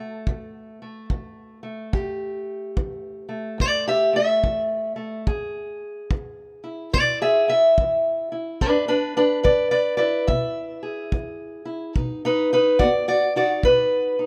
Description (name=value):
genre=acoustic country blues, solo or duo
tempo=72 BPM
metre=4/4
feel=swing 62% on 8ths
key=E mixolydian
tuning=A4 = 440 Hz
part: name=fingerpicked steel-string acoustic guitar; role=melody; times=0.0-14.3 s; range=E2 to E5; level=-23 LUFS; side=equal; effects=none
part: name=kick drum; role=drums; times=0.3-13.9 s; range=none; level=-27 LUFS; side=equal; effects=none
room=light reverb, small room ambience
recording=rough home demo mix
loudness=-22 LUFS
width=mono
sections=0.0-14.3 A section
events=steel-string acoustic guitar solo 0.0-14.3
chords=0.0 A5; 5.3 E7; 12.0 B